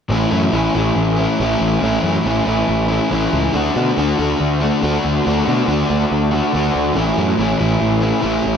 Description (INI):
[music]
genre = rock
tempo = 140 BPM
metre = 4/4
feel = straight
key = A major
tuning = A4 = 440 Hz
[part]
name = crunchy overdriven guitar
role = riff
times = 0.1-8.6 s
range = A2 to F#4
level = -16 LUFS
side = left 1 dB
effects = none
[part]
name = fuzz picked electric bass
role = bass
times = 0.1-8.6 s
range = A1 to B2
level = -20 LUFS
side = right 2 dB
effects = overdrive
[sound]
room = moderate lush hall reverb, RT60 2.8 s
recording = dreamy mix soaked in reverb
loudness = -14 LUFS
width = side -7 dB against mid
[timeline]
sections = 0.1-8.6 A section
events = none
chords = 0.1 A; 3.5 D; 7.0 A